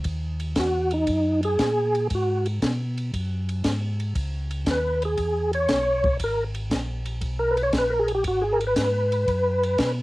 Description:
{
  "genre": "soul jazz organ trio",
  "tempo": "117 BPM",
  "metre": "4/4",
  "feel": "swing 69% on 8ths",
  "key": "G# minor",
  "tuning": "A4 = 441 Hz",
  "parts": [
    { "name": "mellow tonewheel organ", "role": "bass", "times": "0.0-10.0 s", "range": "G#1 to B2", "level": "-27 LUFS", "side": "equal", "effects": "slow rotary speaker" },
    { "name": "compact cocktail drum kit", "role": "drums", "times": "0.0-10.0 s", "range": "hi-hat, kick drum, ride cymbal, snare drum", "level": "-29 LUFS", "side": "equal", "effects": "cassette tape" },
    { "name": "percussive tonewheel organ", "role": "melody", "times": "0.6-9.9 s", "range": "D#4 to C#5", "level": "-22 LUFS", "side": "equal", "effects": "slow rotary speaker, chorus vibrato" }
  ],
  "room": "light reverb",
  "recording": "home recording on cassette",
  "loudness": "-22 LUFS",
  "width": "side -19 dB against mid",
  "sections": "0.0-10.0 A section",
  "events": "tonewheel organ solo 0.0-10.0",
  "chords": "0.0 G#m7; 4.2 C#m9; 8.3 G#m7"
}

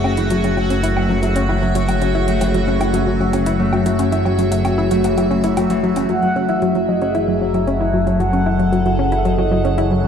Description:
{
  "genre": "ambient, sequencer-driven space music",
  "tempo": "114 BPM",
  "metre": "4/4",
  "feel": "straight",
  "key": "F# minor",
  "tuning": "A4 = 440 Hz",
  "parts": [
    { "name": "evolving wavetable pad", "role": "sustained chords", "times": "0.0-10.1 s", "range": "F#3 to F#5", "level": "-21 LUFS", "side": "left 2 dB", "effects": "phaser, built-in reverb" },
    { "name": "Celtic harp", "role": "arpeggios", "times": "0.0-9.3 s", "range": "E3 to F#4", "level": "-23 LUFS", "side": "moving between left 5 dB and right 1 dB", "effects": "auto-pan, ping-pong delay" },
    { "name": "analog pluck", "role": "riff", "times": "0.0-10.1 s", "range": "F#3 to E4", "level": "-20 LUFS", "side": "left 1 dB", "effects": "chorus, ping-pong delay" },
    { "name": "fat analog bass", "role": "bass", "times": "0.0-10.1 s", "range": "F#1", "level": "-21 LUFS", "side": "right 1 dB", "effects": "none" },
    { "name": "electronic woodblock and hi-hat", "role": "percussion", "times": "0.0-10.0 s", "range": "none", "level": "-30 LUFS", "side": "equal", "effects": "ping-pong delay" },
    { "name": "bubbling stepped-filter texture", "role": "texture", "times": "0.0-6.1 s", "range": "F#4", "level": "-27 LUFS", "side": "right 3 dB", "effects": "chorus, built-in reverb" },
    { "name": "mellow horn-like synth lead", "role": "melody", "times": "6.1-10.1 s", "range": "C#5 to F#5", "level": "-22 LUFS", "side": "equal", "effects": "chorus, ping-pong delay" }
  ],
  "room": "moderate plate reverb, RT60 2.8 s",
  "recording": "echo-heavy mix",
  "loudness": "-15 LUFS",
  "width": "side -7 dB against mid",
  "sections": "0.0-6.1 A section; 6.1-10.1 B section",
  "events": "none",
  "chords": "0.0 F#m7"
}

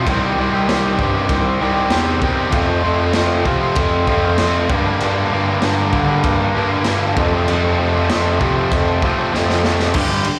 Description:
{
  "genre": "garage rock duo or trio",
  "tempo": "97 BPM",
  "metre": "4/4",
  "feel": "straight",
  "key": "unclear",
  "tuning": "A4 = 440 Hz",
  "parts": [
    { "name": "crunchy overdriven guitar", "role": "riff", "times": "0.0-10.3 s", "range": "F2 to G4", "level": "-20 LUFS", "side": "equal", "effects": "slapback echo" },
    { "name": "dark bass clarinet", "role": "bass", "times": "0.0-10.4 s", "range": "C2 to D3", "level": "-22 LUFS", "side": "equal", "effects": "overdrive" },
    { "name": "raw garage drum kit", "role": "drums", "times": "0.1-10.4 s", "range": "crash cymbal, kick drum, ride cymbal, snare drum", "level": "-24 LUFS", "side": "equal", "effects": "none" }
  ],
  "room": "little or no reverb",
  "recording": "live gig heard through the venue's PA, recital hall reverb",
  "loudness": "-17 LUFS",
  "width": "mono",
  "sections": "0.0-10.0 A section",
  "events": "drum fill 9.3-10.0",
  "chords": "0.1 Cm; 2.5 F; 4.7 Gm; 7.2 F"
}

